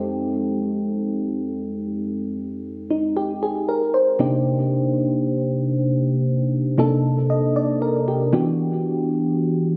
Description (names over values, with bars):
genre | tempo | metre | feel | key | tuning
R&B | 58 BPM | 4/4 | straight | unclear | A4 = 440 Hz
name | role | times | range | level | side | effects
mellow FM electric piano | solo | 0.0-9.8 s | F2 to Eb5 | -22 LUFS | equal | chorus, digital delay
room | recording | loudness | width
light reverb | recorded on a phone in the room, club reverb, compression | -22 LUFS | mono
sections
0.0-9.8 A section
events
none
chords
0.0 Fm9; 4.2 Cm9; 8.3 Em9